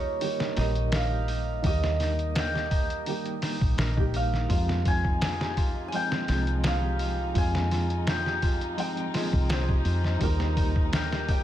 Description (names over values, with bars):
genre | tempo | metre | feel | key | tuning
trip hop | 84 BPM | 4/4 | straight | F minor | A4 = 440 Hz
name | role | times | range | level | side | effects
cimbalom | melody | 0.0-11.4 s | Bb4 to Ab5 | -32 LUFS | equal | tape echo
felt-muted upright piano | accompaniment | 0.0-11.4 s | Eb3 to G5 | -34 LUFS | right 2 dB | tremolo
Celtic harp | arpeggios | 0.0-11.4 s | Eb4 to Bb4 | -37 LUFS | equal | vintage 12-bit sampler grit, tape echo
deep dub fingered electric bass | bass | 0.0-11.4 s | Bb1 to F2 | -28 LUFS | equal | none
trip hop sampler-style drum kit | drums | 0.2-11.4 s | hi-hat, kick drum, snare drum | -28 LUFS | equal | vintage 12-bit sampler grit, studio reverb
warm symphonic string section | sustained chords | 4.5-11.4 s | Eb4 | -39 LUFS | left 6 dB | vintage 12-bit sampler grit
room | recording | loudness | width
studio ambience | none | -24 LUFS | side -12 dB against mid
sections
0.0-11.4 A section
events
none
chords
0.0 Eb; 4.5 Fmadd9; 10.2 Eb